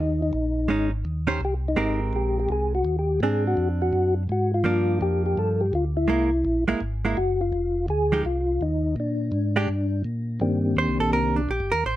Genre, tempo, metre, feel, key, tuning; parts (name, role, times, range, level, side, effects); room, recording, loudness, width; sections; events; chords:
jazz; 167 BPM; 4/4; swing 64% on 8ths; A4 = 440 Hz
percussive tonewheel organ; melody; 0.0-11.4 s; Eb3 to A4; -24 LUFS; left 1 dB; slow rotary speaker, chorus vibrato
mellow tonewheel organ; bass; 0.0-12.0 s; F1 to Bb2; -26 LUFS; equal; slow rotary speaker
hollow-body jazz guitar; accompaniment; 0.7-12.0 s; Eb3 to C5; -26 LUFS; right 3 dB
light reverb; -22 LUFS; side -14 dB against mid
0.0-10.4 A section; 10.4-12.0 B section
hollow-body jazz guitar solo 10.4-12.0
0.3 Bbm7; 1.1 Eb6; 1.8 Abmaj9; 3.2 Ab7#11; 4.6 Gm7; 6.1 Caug7; 7.5 Fm7; 9.0 Bb6; 10.4 Cm7